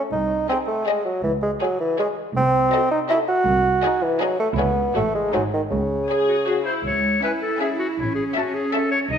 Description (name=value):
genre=cinematic, playful, whimsical film cue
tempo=161 BPM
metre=3/4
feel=straight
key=C# minor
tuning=A4 = 439 Hz
part: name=warm studio violin section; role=melody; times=0.0-9.0 s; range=B#4 to A5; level=-31 LUFS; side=left 5 dB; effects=none
part: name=rich studio violin section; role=second line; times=0.0-9.0 s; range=F#4 to E5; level=-31 LUFS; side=left 4 dB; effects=none
part: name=mellow bassoon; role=accompaniment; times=0.0-6.7 s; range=C#3 to Gb4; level=-20 LUFS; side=right 1 dB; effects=none
part: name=warm studio viola section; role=accompaniment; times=0.0-9.0 s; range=C#4 to G#4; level=-29 LUFS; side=right 1 dB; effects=none
part: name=dark studio cello section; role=bass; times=0.1-9.2 s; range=B#1 to E4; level=-28 LUFS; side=right 3 dB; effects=none
part: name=dark studio double bass section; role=bass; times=0.1-9.2 s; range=G#1 to C#2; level=-30 LUFS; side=right 3 dB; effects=none
part: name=clear clarinet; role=second line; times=6.3-9.2 s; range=E4 to D#5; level=-23 LUFS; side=left 4 dB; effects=none
room=moderate scoring stage reverb, RT60 1.6 s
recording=none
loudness=-19 LUFS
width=side -8 dB against mid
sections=0.0-6.9 A section; 6.9-9.2 A section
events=none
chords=0.1 G#/B#; 1.2 C#5; 2.4 Cdim7; 3.5 G#7/B#; 4.6 C#m; 5.0 F#m/A; 5.3 G#7; 5.7 C#m; 8.0 A